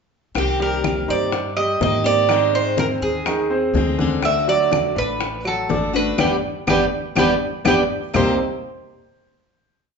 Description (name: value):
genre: latin, Cuban son and guajira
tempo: 123 BPM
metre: 4/4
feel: straight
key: C minor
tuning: A4 = 440 Hz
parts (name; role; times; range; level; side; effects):
- picked steel-string acoustic guitar; accompaniment; 0.3-8.3 s; C3 to Ab4; -24 LUFS; left 4 dB; none
- Cuban tres; melody; 0.4-8.4 s; G4 to E5; -20 LUFS; right 4 dB; none
- upright bass; bass; 0.4-8.4 s; G1 to Ab2; -28 LUFS; left 1 dB; none
- bongos; percussion; 0.4-8.3 s; none; -28 LUFS; left 5 dB; none
- claves; percussion; 0.4-8.3 s; none; -29 LUFS; right 2 dB; none
- congas; percussion; 0.4-8.3 s; none; -28 LUFS; left 3 dB; none
- clear grand piano; arpeggios; 0.6-8.4 s; C3 to Eb5; -24 LUFS; equal; none
room: wet large studio reverb, RT60 1.2 s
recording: band playing live in one room, nothing above 7.7 kHz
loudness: -17 LUFS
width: side -5 dB against mid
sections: 0.4-8.1 verse; 8.1-10.0 final chord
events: band accent 6.2-8.1; drum fill 7.9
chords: 0.4 Cm7; 2.3 Ab; 4.2 D; 6.2 G; 8.1 Cm7